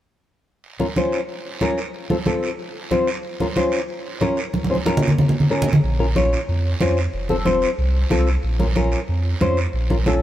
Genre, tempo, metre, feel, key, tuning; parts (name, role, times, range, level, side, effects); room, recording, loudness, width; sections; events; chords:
latin, cumbia; 185 BPM; 4/4; straight; Bb harmonic minor; A4 = 439 Hz
guiro; percussion; 0.6-10.2 s; -32 LUFS; right 4 dB
nylon-string guitar; accompaniment; 0.8-10.2 s; C4 to Db5; -22 LUFS; left 2 dB
congas; percussion; 0.8-10.2 s; -22 LUFS; right 1 dB
saturated sub bass; bass; 5.8-10.2 s; F1 to F2; -20 LUFS; equal
moderate plate reverb, RT60 3.5 s; heard from further back in the room; -18 LUFS; side -12 dB against mid
0.6-5.8 A section; 5.8-10.2 B section
drum fill 4.5-5.8
0.6 Bbm; 1.9 F; 3.2 Bbm; 7.1 F; 8.4 Bbm